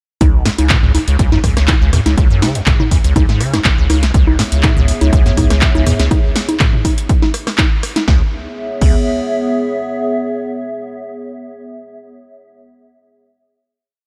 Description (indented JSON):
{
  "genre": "acid house",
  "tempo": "122 BPM",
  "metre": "4/4",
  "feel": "straight",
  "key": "C# minor",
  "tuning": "A4 = 441 Hz",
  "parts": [
    { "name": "liquid acid bass", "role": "riff", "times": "0.2-9.0 s", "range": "B1 to C#3", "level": "-17 LUFS", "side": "equal", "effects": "ensemble chorus, analog delay" },
    { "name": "electro analog drum machine", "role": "drums", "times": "0.2-9.0 s", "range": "congas, crash cymbal, handclaps, hi-hat, rim click, snare drum, toms", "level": "-20 LUFS", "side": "equal", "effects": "none" },
    { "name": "electronic kick drum", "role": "drums", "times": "0.2-9.0 s", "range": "none", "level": "-16 LUFS", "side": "equal", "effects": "none" },
    { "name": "warbly tape-like pad", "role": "sustained chords", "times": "4.4-11.3 s", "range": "B3 to E5", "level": "-23 LUFS", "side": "equal", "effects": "chorus, built-in reverb, sidechain pumping" }
  ],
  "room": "light reverb",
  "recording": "none",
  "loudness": "-14 LUFS",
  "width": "mono",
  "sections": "0.2-8.1 drop; 8.1-12.0 final chord",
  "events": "drop 0.2-8.1",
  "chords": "0.2 C#m7",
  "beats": "| 0.21 0.70 1.19 1.68 | 2.18 2.67 3.16 3.65 | 4.14 4.63 5.13 5.62 | 6.11 6.60 7.09 7.58 | 8.08 8.57 9.06 9.55 | 10.04 10.54 11.03"
}